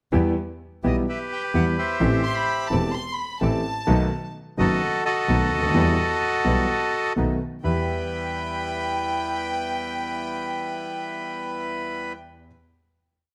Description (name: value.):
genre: tango.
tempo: 128 BPM.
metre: 4/4.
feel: rubato.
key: E harmonic minor.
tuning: A4 = 442 Hz.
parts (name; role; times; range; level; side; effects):
clear concert grand piano; accompaniment; 0.1-12.5 s; E1 to G4; -28 LUFS; equal; none.
bandoneon; stabs; 0.1-12.1 s; G3 to G4; -37 LUFS; equal; none.
clear double bass; bass; 0.1-7.8 s; E1 to E2; -28 LUFS; equal; none.
bandoneon; melody; 0.9-12.1 s; F#4 to G5; -28 LUFS; equal; none.
warm chamber violin section; second line; 2.2-4.3, 7.6-12.1 s; G5 to C6; -32 LUFS; equal; none.
room: moderate large studio reverb, RT60 1.2 s.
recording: none.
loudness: -24 LUFS.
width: mono.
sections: 0.1-7.6 A section; 7.6-11.4 final chord.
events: none.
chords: 0.1 Em; 2.0 Am7; 3.9 B7; 5.8 Em; 7.2 B7; 7.6 Em.